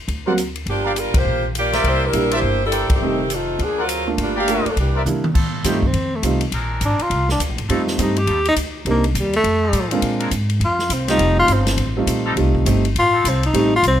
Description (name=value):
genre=jazz, big band swing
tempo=205 BPM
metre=4/4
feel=swing 62% on 8ths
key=F mixolydian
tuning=A4 = 440 Hz
part: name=upright bass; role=bass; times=0.1-14.0 s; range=F1 to C3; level=-22 LUFS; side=equal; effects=none
part: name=swinging big-band drum kit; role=drums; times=0.1-13.9 s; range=crash cymbal, hi-hat, kick drum, ride cymbal, snare drum, toms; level=-24 LUFS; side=left 1 dB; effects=none
part: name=warm baby grand piano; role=accompaniment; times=0.3-13.7 s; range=F#3 to G4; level=-21 LUFS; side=right 2 dB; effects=none
part: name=warm trumpet section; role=stabs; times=0.3-5.0 s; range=G4 to G5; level=-23 LUFS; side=equal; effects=none
part: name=clear saxophone section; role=melody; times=0.7-5.1 s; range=Eb3 to D5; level=-21 LUFS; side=equal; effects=plate reverb
part: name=muted trombone section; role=sustained chords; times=5.3-13.5 s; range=G3 to Bb4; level=-28 LUFS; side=left 2 dB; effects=none
part: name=mellow tenor saxophone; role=melody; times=5.7-14.0 s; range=D3 to G4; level=-18 LUFS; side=left 1 dB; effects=plate reverb
room=light reverb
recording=close, detailed microphones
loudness=-16 LUFS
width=side -10 dB against mid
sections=0.0-5.4 A section; 5.4-14.0 B section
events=band accent 1.1, 2.9; drum fill 5.1; tenor saxophone solo 5.4-14.0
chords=0.1 Daug7; 0.7 Gm7; 1.8 C9; 3.0 F9; 3.6 D7alt; 4.2 Gm7; 4.8 C9; 5.4 F9; 6.5 Bb9; 7.7 F9; 8.9 Cm7; 9.4 F9; 10.0 Bb9; 11.2 F9